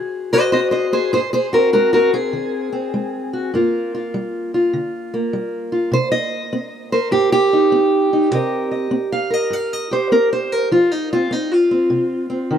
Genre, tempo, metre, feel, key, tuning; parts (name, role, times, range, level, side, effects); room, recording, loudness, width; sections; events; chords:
acoustic country blues, solo or duo; 100 BPM; 4/4; swing 66% on 8ths; C minor; A4 = 439 Hz
fingerpicked steel-string acoustic guitar; solo; 0.0-12.6 s; G2 to F5; -16 LUFS; equal
moderate plate reverb, RT60 3.6 s; -16 LUFS; side -8 dB against mid
0.0-8.3 A section; 8.3-12.6 A section
steel-string acoustic guitar solo 0.0-12.6
0.0 Ab7; 3.5 Gm7; 5.9 Cm7; 10.7 F5